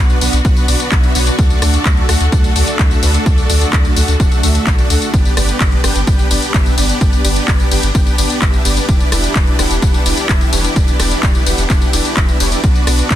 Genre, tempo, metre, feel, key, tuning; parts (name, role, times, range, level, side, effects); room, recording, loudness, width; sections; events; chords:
EDM, festival progressive house; 128 BPM; 4/4; straight; A4 = 440 Hz
rich studio string section; sustained chords; 0.0-13.2 s; D3 to A4; -24 LUFS; left 2 dB; sidechain pumping
dense compressed supersaw; riff; 0.0-13.2 s; A3 to G5; -19 LUFS; equal; sidechain pumping, dub echo
saturated sub bass; bass; 0.0-13.2 s; D1 to D2; -17 LUFS; equal; sidechain pumping
house drum kit; drums; 0.1-13.2 s; handclaps, hi-hat, ride cymbal, rim click, tambourine; -19 LUFS; left 2 dB
electronic kick drum; drums; 0.4-13.2 s; -14 LUFS; equal
digital ambience; dense, heavily limited modern master; -11 LUFS; side -12 dB against mid
0.0-13.2 A section
0.0 Bm; 1.4 D; 5.1 G; 8.9 Em7; 12.6 Bm